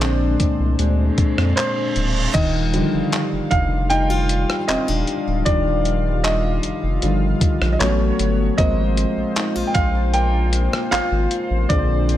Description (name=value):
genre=contemporary R&B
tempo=77 BPM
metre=4/4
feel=straight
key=Eb major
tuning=A4 = 445 Hz
part: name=warm baby grand piano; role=accompaniment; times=0.0-12.2 s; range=D3 to G5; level=-23 LUFS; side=right 1 dB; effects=none
part: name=chorused pulse-width pad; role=sustained chords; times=0.0-12.2 s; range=G3 to F5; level=-27 LUFS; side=equal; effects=none
part: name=fingerpicked plugged-in steel-string acoustic guitar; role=arpeggios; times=0.0-12.2 s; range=Bb2 to Bb4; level=-25 LUFS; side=left 3 dB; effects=ping-pong delay
part: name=saturated sub bass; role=bass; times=0.0-12.2 s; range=D1 to F2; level=-20 LUFS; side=equal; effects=none
part: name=dusty soul sampler-style drum kit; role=drums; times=0.0-12.2 s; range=crash cymbal, handclaps, hi-hat, kick drum, rim click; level=-22 LUFS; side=equal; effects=none
part: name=reverse cymbal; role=sound effects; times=1.1-2.3 s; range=none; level=-29 LUFS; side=right 4 dB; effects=none
room=little or no reverb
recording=none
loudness=-17 LUFS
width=side -12 dB against mid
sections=0.0-2.3 A section; 2.3-12.2 B section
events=grand piano solo 0.0-2.3, 2.3-12.2; reverse cymbal 1.1-2.3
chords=0.0 Bb9; 2.3 Ebmaj9; 7.8 A69; 8.6 Ab69